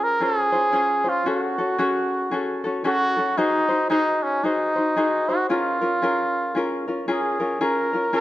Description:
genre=Hawaiian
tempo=114 BPM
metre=4/4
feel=swing 61% on 8ths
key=Db major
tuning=A4 = 440 Hz
part: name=trumpet with cup mute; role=melody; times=0.0-8.2 s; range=Db4 to Bb4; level=-22 LUFS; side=right 1 dB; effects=none
part: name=tenor ukulele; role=accompaniment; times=0.0-8.2 s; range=Db4 to C5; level=-24 LUFS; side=left 2 dB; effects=none
room=moderate recital hall reverb, RT60 1.6 s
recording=close, detailed microphones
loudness=-20 LUFS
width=side -14 dB against mid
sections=0.0-8.2 A section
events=none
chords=0.0 Dbmaj7; 1.3 Gbmadd9; 3.4 Ab7; 5.5 Db6

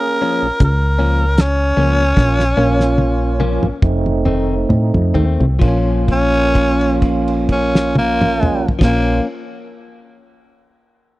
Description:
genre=straight-eighth soul blues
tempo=64-79 BPM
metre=4/4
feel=swing 55% on 16ths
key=Bb minor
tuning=A4 = 442 Hz
part: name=growling tenor saxophone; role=melody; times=0.0-9.2 s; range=Bb3 to Bb4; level=-18 LUFS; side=equal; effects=none
part: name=tonewheel organ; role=accompaniment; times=0.0-9.2 s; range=A3 to Ab4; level=-20 LUFS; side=right 4 dB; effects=slow rotary speaker, overdrive, chorus vibrato
part: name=direct-recorded clean electric guitar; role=stabs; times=0.2-9.3 s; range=Eb3 to Db4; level=-22 LUFS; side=left 4 dB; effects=spring reverb
part: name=solid FM bass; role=bass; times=0.4-9.2 s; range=F1 to A2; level=-17 LUFS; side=equal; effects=none
part: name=cloth-damped thuddy drum kit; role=drums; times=0.6-9.0 s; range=crash cymbal, hi-hat, kick drum, snare drum, toms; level=-17 LUFS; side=equal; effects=none
room=studio reverb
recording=dry, close 1970s-style studio recording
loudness=-13 LUFS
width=side -18 dB against mid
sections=0.0-5.6 A section; 5.6-9.4 B section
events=slowing down 0.0-5.6; drum fill 2.2-5.6; held note 5.6-8.8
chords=0.0 Bbm; 3.8 F7; 5.6 Bbm

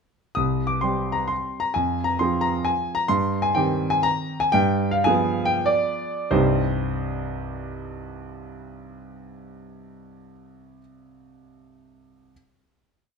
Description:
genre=classical, piano waltz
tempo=89-139 BPM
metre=3/4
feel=rubato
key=C minor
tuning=A4 = 440 Hz
part: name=clear grand piano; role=solo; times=0.3-12.3 s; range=C2 to Eb6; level=-21 LUFS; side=equal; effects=none
room=moderate stone room reverb, RT60 1.1 s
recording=close, detailed microphones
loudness=-20 LUFS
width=side -5 dB against mid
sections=0.4-6.3 A section; 6.3-10.1 final chord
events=slowing down 2.4-6.3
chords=0.4 C5; 1.8 Fm; 3.1 Cm/G; 4.5 G7b9; 6.3 Cm

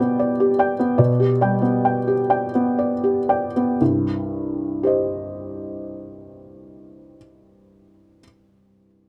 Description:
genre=neoclassical minimalist piano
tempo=56-77 BPM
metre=3/4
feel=rubato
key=C harmonic minor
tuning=A4 = 440 Hz
part: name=felt-muted upright piano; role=solo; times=0.0-9.1 s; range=C2 to G5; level=-21 LUFS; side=equal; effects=none
room=light reverb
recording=none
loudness=-20 LUFS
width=mono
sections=0.0-3.8 A section; 3.8-6.9 B section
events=slowing down 0.0-3.8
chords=0.0 G/B; 3.8 Cm

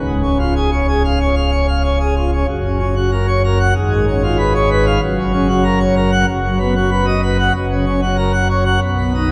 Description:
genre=classical, organ toccata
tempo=94 BPM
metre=4/4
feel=straight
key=F# major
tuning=A4 = 440 Hz
part: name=pipe organ, plenum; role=solo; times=0.0-9.3 s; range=C#1 to F#5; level=-16 LUFS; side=equal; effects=none
room=wet cathedral reverb, RT60 5.0 s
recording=none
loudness=-16 LUFS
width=mono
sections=0.0-9.3 A section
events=none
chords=0.0 C#; 2.5 F#; 3.8 C#7/G#; 5.0 F#; 6.3 B/F#; 7.5 F#

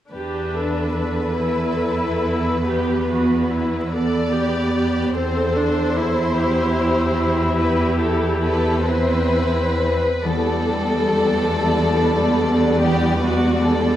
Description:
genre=cinematic, emotional film score for orchestra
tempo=43-50 BPM (dotted quarters)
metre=6/8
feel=rubato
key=E minor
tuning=A4 = 440 Hz
part: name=rich studio violin section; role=melody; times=0.1-14.0 s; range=A4 to D5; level=-26 LUFS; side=left 2 dB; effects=none
part: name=rich studio viola section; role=accompaniment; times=0.1-14.0 s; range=G3 to A4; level=-22 LUFS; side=right 1 dB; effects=none
part: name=rich studio cello section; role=bass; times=0.1-14.0 s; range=E2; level=-22 LUFS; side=right 1 dB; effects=none
part: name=rich studio violin section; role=second line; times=8.4-14.0 s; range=F#4 to B4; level=-21 LUFS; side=left 2 dB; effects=none
part: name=concert harp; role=arpeggios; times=10.2-14.0 s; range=E2 to B5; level=-25 LUFS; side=left 3 dB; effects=none
room=moderate recital hall reverb, RT60 1.5 s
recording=vinyl crackle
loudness=-17 LUFS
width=side -12 dB against mid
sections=0.1-10.2 A section; 10.2-14.0 B section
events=none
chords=0.1 Em7; 5.1 Cmaj7/E; 10.2 Em7

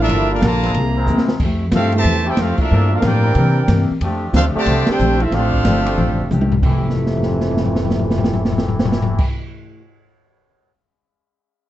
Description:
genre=jazz, big band swing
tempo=184 BPM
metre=4/4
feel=swing 65% on 8ths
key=F major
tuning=A4 = 440 Hz
part: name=bright trumpet section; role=melody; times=0.0-6.3 s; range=C4 to Bb5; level=-21 LUFS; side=right 1 dB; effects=none
part: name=warm trombone section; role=second line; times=0.0-9.2 s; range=F2 to Bb4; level=-22 LUFS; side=right 2 dB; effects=none
part: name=upright bass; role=bass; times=0.0-9.2 s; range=F1 to C3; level=-19 LUFS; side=equal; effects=none
part: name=picked steel-string acoustic guitar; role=accompaniment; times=0.1-9.8 s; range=G2 to A4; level=-23 LUFS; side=left 3 dB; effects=none
part: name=muted trombone section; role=sustained chords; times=0.1-9.2 s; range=E3 to Bb4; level=-28 LUFS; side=equal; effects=none
part: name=open jazz drum kit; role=drums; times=0.1-10.7 s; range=crash cymbal, hi-hat, kick drum, ride cymbal, snare drum, toms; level=-20 LUFS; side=equal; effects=none
room=moderate large studio reverb, RT60 0.8 s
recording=dark, warm production, nothing above 8.0 kHz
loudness=-14 LUFS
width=side -13 dB against mid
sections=0.0-6.6 A section; 6.6-9.2 B section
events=drum fill 1.1-1.4, 6.3-6.6, 6.8-9.2; band accent 2.5, 4.8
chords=0.1 Gm9; 0.7 C7alt; 1.4 Fmaj9; 2.7 Gm11; 3.4 C9; 4.0 F69; 6.6 Fmaj9

